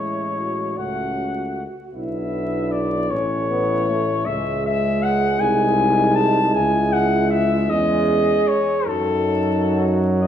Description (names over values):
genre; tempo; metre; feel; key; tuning
classical, hymn-like piece for brass band; 52 BPM (dotted quarters); 6/8; uneven beats, rubato; C# minor from 4.3 s; A4 = 441 Hz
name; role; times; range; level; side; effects
mellow flugelhorn; melody; 0.0-10.3 s; A4 to A5; -22 LUFS; left 4 dB; none
dark French horn section; second line; 0.0-10.3 s; D#4 to A4; -26 LUFS; right 6 dB; none
mellow trombone; accompaniment; 0.0-10.3 s; F#3 to C#4; -26 LUFS; right 2 dB; none
warm euphonium; accompaniment; 0.0-10.3 s; C#4 to E4; -27 LUFS; left 2 dB; none
warm tuba; bass; 0.0-10.3 s; A1 to F#2; -24 LUFS; right 1 dB; none
room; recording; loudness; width
wet recital hall reverb, RT60 1.6 s; recorded in a church or concert hall, vinyl crackle; -17 LUFS; side -9 dB against mid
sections
0.0-10.3 A section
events
none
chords
0.0 A; 1.9 E5/B; 3.1 A; 4.3 C#5; 5.4 G#/B#; 6.5 C#m; 8.9 D#dim/F#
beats
0.78 | 1.95 3.12 | 4.28 5.41 | 6.55 7.71 | 8.88 10.23